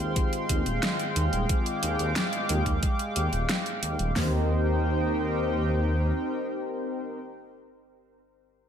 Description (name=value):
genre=synthwave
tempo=90 BPM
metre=4/4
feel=straight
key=Eb major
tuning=A4 = 436 Hz
part: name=chorused pulse-width pad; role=sustained chords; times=0.0-7.2 s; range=Ab3 to D6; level=-30 LUFS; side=right 1 dB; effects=sidechain pumping
part: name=mellow synth brass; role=stabs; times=0.0-7.2 s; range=Eb3 to Eb5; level=-35 LUFS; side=left 2 dB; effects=chorus, ping-pong delay
part: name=dark detuned saw bass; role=bass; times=0.0-6.1 s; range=Eb1 to Eb2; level=-27 LUFS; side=equal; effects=sidechain pumping
part: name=pop drum kit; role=drums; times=0.2-4.3 s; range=hi-hat, kick drum, snare drum, toms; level=-28 LUFS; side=equal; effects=overdrive
part: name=pop drum kit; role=drums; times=0.2-4.1 s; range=hi-hat, snare drum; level=-30 LUFS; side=equal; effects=overdrive, gated reverb
room=light reverb, digital ambience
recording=none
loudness=-24 LUFS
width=side -8 dB against mid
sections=0.0-4.2 A section; 4.2-6.8 B section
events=none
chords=0.0 Fmadd9/Eb; 4.2 Eb6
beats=0.16 0.83 | 1.49 2.16 2.83 3.49 | 4.16 4.83 5.49 6.16